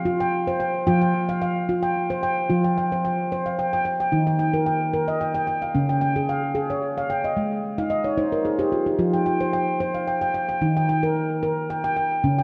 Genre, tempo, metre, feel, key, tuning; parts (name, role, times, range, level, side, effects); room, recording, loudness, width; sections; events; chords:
world meditative, meditative tuned percussion; 111 BPM; 3/4; swing 54% on 16ths; F minor; A4 = 444 Hz
handpan; solo; 0.0-12.4 s; Db3 to G5; -23 LUFS; equal; analog delay
wet plate reverb, RT60 3.3 s; dreamy mix soaked in reverb; -23 LUFS; mono
0.0-2.5 A section; 2.5-12.4 B section
handpan fill 7.8-9.0
0.0 F5; 4.1 Eb; 5.7 Db; 7.4 Ab; 9.0 F5; 10.6 Eb